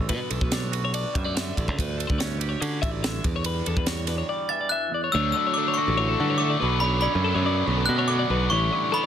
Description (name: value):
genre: math rock and midwest emo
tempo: 143 BPM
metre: 4/4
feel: straight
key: D major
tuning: A4 = 441 Hz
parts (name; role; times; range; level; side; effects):
- twangy electric guitar; accompaniment; 0.0-9.1 s; D2 to G4; -32 LUFS; right 9 dB; phaser
- twelve-string electric guitar; arpeggios; 0.0-9.1 s; A4 to E5; -30 LUFS; left 7 dB; none
- modern bright picked electric bass; bass; 0.0-8.7 s; A1 to D3; -26 LUFS; equal; none
- crisp fusion drum kit; drums; 0.1-4.2 s; kick drum, ride cymbal, snare drum; -28 LUFS; equal; none
- glockenspiel with brass mallets; melody; 4.5-9.1 s; B5 to A6; -25 LUFS; left 1 dB; none
- cranked stack guitar; riff; 5.1-9.1 s; A2 to E4; -28 LUFS; left 1 dB; overdrive
room: light reverb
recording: dense, heavily limited modern master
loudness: -22 LUFS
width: side -9 dB against mid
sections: 0.0-5.1 A section; 5.1-9.1 B section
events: none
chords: 0.0 Bm7; 1.8 D5; 3.3 Em7; 5.1 Dmaj7; 6.6 Bm9; 8.5 A9sus4